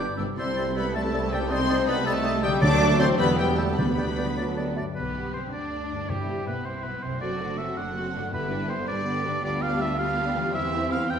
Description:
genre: classical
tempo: 107 BPM (dotted quarters)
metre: 6/8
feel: rubato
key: G major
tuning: A4 = 440 Hz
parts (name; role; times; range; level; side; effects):
- warm symphonic violin section; melody; 0.0-11.2 s; G4 to D6; -34 LUFS; left 4 dB; none
- bright silver concert flute; second line; 0.0-4.8 s; D6 to A6; -36 LUFS; left 2 dB; none
- clear clarinet; second line; 0.0-4.8 s; G4 to D5; -32 LUFS; left 1 dB; none
- clear oboe; second line; 0.0-11.2 s; G4 to G5; -32 LUFS; right 2 dB; none
- warm symphonic violin section; second line; 0.0-11.2 s; G3 to B4; -36 LUFS; left 4 dB; none
- mellow bassoon; accompaniment; 0.0-4.8 s; F#3 to A3; -35 LUFS; right 1 dB; none
- warm symphonic viola section; accompaniment; 0.0-11.2 s; D3 to D4; -32 LUFS; right 2 dB; none
- clear trombone section; sustained chords; 0.0-4.8 s; F#3 to D4; -35 LUFS; right 3 dB; none
- mellow French horn section; sustained chords; 0.0-4.8 s; G3 to D4; -30 LUFS; left 4 dB; none
- concert harp; arpeggios; 0.0-11.2 s; F#2 to C5; -34 LUFS; left 6 dB; none
- mellow tuba; bass; 0.0-4.8 s; E1 to D2; -31 LUFS; right 3 dB; none
- rich symphonic cello section; bass; 0.0-11.2 s; G3 to G4; -34 LUFS; right 3 dB; none
- warm symphonic double bass section; bass; 0.0-11.2 s; F#1 to E2; -34 LUFS; right 3 dB; none
- timpani; percussion; 2.6-8.8 s; G2 to D3; -31 LUFS; equal; none
room: wet scoring stage reverb, RT60 1.5 s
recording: none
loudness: -23 LUFS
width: side -7 dB against mid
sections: 0.0-5.0 A section; 5.0-11.2 B section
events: none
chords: 0.4 Am7/C; 1.5 Am7b5/C; 2.6 D; 3.2 Em; 3.8 G/D; 4.4 D; 5.0 G/B; 6.1 C/G; 7.2 D7/F#; 8.3 G; 9.4 G7/D; 10.5 C/E

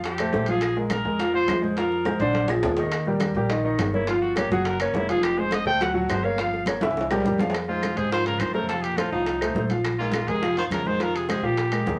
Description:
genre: Afro-Cuban jazz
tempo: 208 BPM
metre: 4/4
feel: straight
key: F minor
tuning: A4 = 440 Hz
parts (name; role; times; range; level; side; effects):
- warm baby grand piano; accompaniment; 0.0-12.0 s; D3 to Gb5; -27 LUFS; equal; none
- upright bass; bass; 0.0-12.0 s; F1 to Ab2; -34 LUFS; equal; none
- congas; percussion; 0.0-12.0 s; none; -35 LUFS; equal; none
- timbales; percussion; 0.0-12.0 s; none; -35 LUFS; equal; none
- clear trumpet; melody; 0.1-12.0 s; Db4 to G5; -31 LUFS; equal; none
- bongos; percussion; 0.1-12.0 s; none; -35 LUFS; equal; none
- claves; percussion; 0.2-11.9 s; none; -38 LUFS; equal; none
- breathy baritone saxophone; second line; 7.7-12.0 s; Ab2 to Eb3; -38 LUFS; equal; none
room: moderate studio ambience, RT60 0.5 s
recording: none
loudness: -24 LUFS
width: mono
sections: 0.0-7.5 A section; 7.5-12.0 B section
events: trumpet solo 0.0-7.5; drum fill 2.1-2.9, 6.8-7.5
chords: 0.0 F; 0.6 Bbsus2; 1.8 Fmadd11; 2.3 Bb7; 2.9 Eb; 4.1 Gm7b5; 4.7 Gb; 5.2 Fm; 5.8 D; 6.4 Gm7b5; 7.0 C7; 7.5 Fm; 8.7 F7; 9.9 Bbsus2

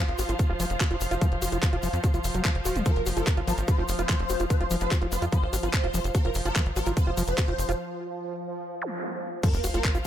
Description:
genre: psychedelic trance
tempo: 146 BPM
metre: 4/4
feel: straight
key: unclear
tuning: A4 = 440 Hz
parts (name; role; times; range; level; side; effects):
- bubbling stepped-filter texture; sustained chords; 0.0-10.1 s; F3; -35 LUFS; equal; chorus, built-in reverb, sidechain pumping
- overdriven acid bass; riff; 0.0-10.0 s; F3 to Gb4; -32 LUFS; equal; distortion, auto-pan, cassette tape, sidechain pumping, digital delay
- warm studio string section; texture; 0.0-10.1 s; F4 to F5; -37 LUFS; equal; sidechain pumping
- tight sequencer bass; bass; 0.1-10.0 s; Eb1 to F2; -30 LUFS; equal; none
- garage drum kit; drums; 0.1-10.0 s; crash cymbal, handclaps, hi-hat; -32 LUFS; left 1 dB; none
- egg shaker; percussion; 0.2-10.0 s; none; -40 LUFS; left 3 dB; none
- electronic kick drum; drums; 0.4-9.9 s; none; -25 LUFS; equal; none
- swarming rave lead; melody; 2.9-9.9 s; Bb4 to C5; -33 LUFS; equal; chorus, phaser, sidechain pumping, digital delay
- zap and sub drop; sound effects; 8.8-10.1 s; none; -33 LUFS; equal; none
room: digital ambience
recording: none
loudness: -24 LUFS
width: side -11 dB against mid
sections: 0.0-9.4 A section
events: break 7.8-9.4; impact 9.4-10.1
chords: 0.0 F5

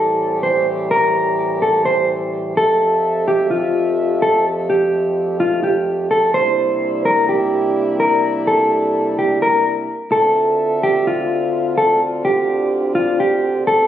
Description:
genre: hip hop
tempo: 127 BPM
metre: 4/4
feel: half-time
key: D minor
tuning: A4 = 439 Hz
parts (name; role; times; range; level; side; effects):
- mellow electric guitar; melody; 0.0-13.9 s; F4 to C5; -15 LUFS; equal; ping-pong delay
- dark French horn section; sustained chords; 0.0-13.9 s; D2 to E5; -22 LUFS; equal; none
room: moderate studio ambience, RT60 0.5 s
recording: recorded on a phone in the room, club reverb, compression, nothing above 10.9 kHz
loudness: -14 LUFS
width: side -10 dB against mid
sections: 0.0-10.1 A section; 10.1-13.9 B section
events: none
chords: 0.0 Am7; 2.6 Fmaj7; 6.3 C7; 10.1 Dm7

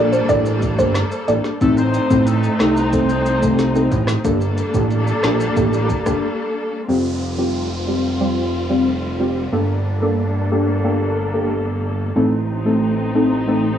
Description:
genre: dancehall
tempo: 91 BPM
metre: 4/4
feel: straight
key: G minor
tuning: A4 = 439 Hz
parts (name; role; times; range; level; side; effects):
- soft round pluck; melody; 0.0-1.4 s; C5 to D5; -20 LUFS; right 1 dB; chorus, cassette tape, analog delay, plate reverb
- deep mellow chord stab; accompaniment; 0.0-13.7 s; G3 to A4; -19 LUFS; equal; chorus, phaser, low-pass filter, cassette tape, plate reverb
- warm studio string section; sustained chords; 0.0-13.8 s; G3 to A4; -24 LUFS; left 1 dB; sidechain pumping, low-pass filter, cassette tape, plate reverb
- fat analog bass; bass; 0.0-13.8 s; F1 to C2; -21 LUFS; right 1 dB; none
- maracas; percussion; 0.1-6.2 s; none; -41 LUFS; equal; none
- afro-pop drum kit; drums; 0.3-6.2 s; hi-hat, kick drum, rim click, snare drum; -24 LUFS; equal; cassette tape
- mellow horn section; second line; 1.6-4.0 s; A3 to C5; -23 LUFS; left 3 dB; cassette tape, analog delay, plate reverb
- downlifter; sound effects; 6.9-12.2 s; none; -34 LUFS; right 1 dB; none
room: moderate booth ambience, RT60 0.2 s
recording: home recording on cassette, small room ambience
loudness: -16 LUFS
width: side -9 dB against mid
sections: 0.0-6.9 A section; 6.9-13.8 B section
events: break 6.2-6.9; filter sweep 6.9-13.8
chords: 0.0 Gmadd9; 1.6 Adim; 4.2 Gmadd9; 6.9 Fsus2; 9.5 Gmadd9; 12.2 Adim

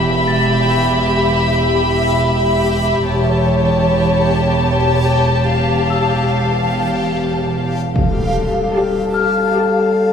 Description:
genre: cinematic, suspense film score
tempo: 75 BPM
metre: 3/4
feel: straight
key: unclear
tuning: A4 = 440 Hz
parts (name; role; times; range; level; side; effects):
- rich studio violin section; melody; 0.0-10.1 s; A5 to B5; -22 LUFS; left 4 dB; none
- warm studio violin section; second line; 0.0-10.1 s; G4 to F5; -20 LUFS; left 2 dB; none
- backwards swelling texture; sustained chords; 0.0-10.1 s; G4 to B5; -21 LUFS; left 1 dB; built-in reverb
- rich studio double bass section; bass; 0.0-8.6 s; E1 to F1; -20 LUFS; right 2 dB; none
- warm chamber cello section; bass; 0.0-8.6 s; E2 to F2; -21 LUFS; right 2 dB; none
- large celesta; texture; 0.0-10.1 s; E6 to A6; -23 LUFS; left 8 dB; none
- mellow French horn section; sustained chords; 7.9-10.1 s; G3 to A4; -17 LUFS; left 2 dB; none
- impact; sound effects; 8.0-10.1 s; none; -23 LUFS; equal; none
- dark studio viola section; accompaniment; 8.8-10.1 s; G4; -23 LUFS; left 1 dB; none
room: wet recital hall reverb, RT60 1.4 s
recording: minimal, uncompressed stereo recording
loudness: -13 LUFS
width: side -7 dB against mid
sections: 0.0-8.0 A section; 8.0-10.1 B section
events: impact 8.0-10.1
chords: 0.0 Em; 3.1 A7/E; 5.5 Fadd9/E; 8.0 Fadd9

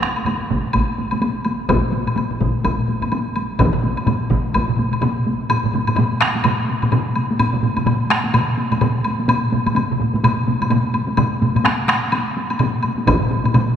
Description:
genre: japanese traditional, taiko drum ensemble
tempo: 126 BPM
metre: 4/4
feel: swing 60% on 16ths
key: none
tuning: none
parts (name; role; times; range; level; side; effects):
- taiko ensemble; percussion; 0.0-13.7 s; none; -22 LUFS; equal; none
- taiko ensemble; percussion; 0.0-13.7 s; none; -21 LUFS; right 3 dB; none
- woodblock; percussion; 0.2-13.7 s; none; -24 LUFS; left 2 dB; none
- taiko ensemble; percussion; 0.5-4.7, 13.1-13.2 s; none; -23 LUFS; equal; none
- taiko ensemble; percussion; 1.7-13.7 s; none; -22 LUFS; left 3 dB; none
room: wet church reverb, RT60 3.3 s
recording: recorded in a church or concert hall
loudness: -16 LUFS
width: side -8 dB against mid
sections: 0.0-5.5 A section; 5.5-13.8 B section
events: none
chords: none

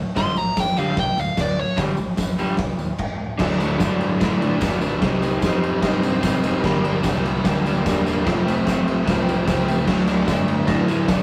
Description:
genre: garage rock duo or trio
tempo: 148 BPM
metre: 4/4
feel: straight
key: G minor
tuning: A4 = 439 Hz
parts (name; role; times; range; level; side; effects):
- fuzz lead guitar; melody; 0.2-1.8 s; C#5 to C6; -25 LUFS; equal; distortion
- crunchy overdriven guitar; riff; 0.2-11.2 s; F2 to Eb4; -24 LUFS; equal; spring reverb
- growling picked electric bass; bass; 0.2-11.2 s; E1 to A2; -30 LUFS; equal; overdrive
- oversized low-tuned drum kit; drums; 0.2-11.2 s; crash cymbal, hi-hat, kick drum, ride cymbal, snare drum; -24 LUFS; equal; none
- tambourine; percussion; 0.2-11.2 s; none; -44 LUFS; equal; none
room: light reverb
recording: rough rehearsal-room recording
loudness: -21 LUFS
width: mono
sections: 0.0-3.4 A section; 3.4-11.2 B section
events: none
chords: 0.0 Gm; 3.4 D; 5.0 Cm; 6.6 Gm; 8.3 F; 9.9 D

